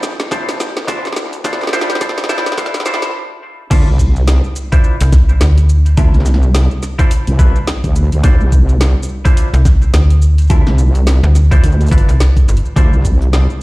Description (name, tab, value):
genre	glitch hop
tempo	106 BPM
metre	4/4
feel	swing 59% on 16ths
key	D dorian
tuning	A4 = 441 Hz
part	wobble bass	bass	0.0-13.5 s	A1 to D2	-13 LUFS	equal	chorus, overdrive, high-pass filter
part	drum and bass drum kit	drums	0.0-13.6 s	crash cymbal, hi-hat, shaker, snare drum	-21 LUFS	equal	overdrive
part	semi-hollow electric guitar	stabs	0.3-12.9 s	D4 to E5	-22 LUFS	equal	sidechain pumping, digital delay
part	electronic kick drum	drums	0.3-13.2 s	none	-11 LUFS	equal	overdrive
part	slap-like FM bass	bass	5.0-6.0, 9.5-12.6 s	G1 to D2	-9 LUFS	equal	none
room	little or no reverb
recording	played on a big sound system in a bare room, large studio reverb, high-pass filter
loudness	-10 LUFS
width	side -20 dB against mid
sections	0.0-3.7 A section; 3.7-13.6 B section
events	build-up 0.0-3.7; drum fill 0.0-3.1; stop 3.1-3.7; drop 3.7-13.6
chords	0.0 Dm9